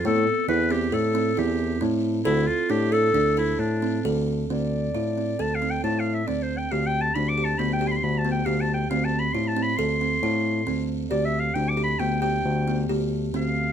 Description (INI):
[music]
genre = contemporary instrumental, chamber music in an uneven meter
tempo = 136 BPM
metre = 5/4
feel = straight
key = D dorian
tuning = A4 = 439 Hz
[part]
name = clear clarinet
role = melody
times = 0.0-13.7 s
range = D4 to D6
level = -26 LUFS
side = left 1 dB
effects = none
[part]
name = buzzing kalimba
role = arpeggios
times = 0.0-13.7 s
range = B3 to A4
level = -27 LUFS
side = right 4 dB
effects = none
[part]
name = barky tine electric piano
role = bass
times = 0.1-13.7 s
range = D2 to A2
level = -26 LUFS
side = left 2 dB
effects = overdrive
[sound]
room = moderate studio reverb, RT60 0.9 s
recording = none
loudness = -22 LUFS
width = side -8 dB against mid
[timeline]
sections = 0.0-4.5 A section; 4.5-13.7 B section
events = none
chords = 0.0 Amadd9; 2.3 D5; 4.5 Dm7; 6.7 G/D; 8.9 Dm7; 11.1 G/D